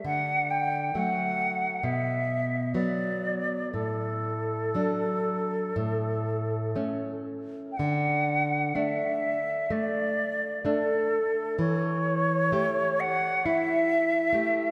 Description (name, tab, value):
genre	romantic duo for flute and classical guitar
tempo	58-68 BPM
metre	4/4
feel	rubato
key	D major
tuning	A4 = 442 Hz
part	nylon-string guitar	accompaniment	0.0-14.7 s	A2 to G4	-32 LUFS	equal	none
part	concert flute	melody	0.1-14.7 s	A4 to G5	-30 LUFS	equal	analog delay
room	wet lush hall reverb, RT60 2.6 s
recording	dreamy mix soaked in reverb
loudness	-27 LUFS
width	mono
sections	0.0-14.7 A section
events	none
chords	0.1 D; 1.8 Bm; 3.8 D/A; 5.8 A; 7.8 D; 11.6 A7/E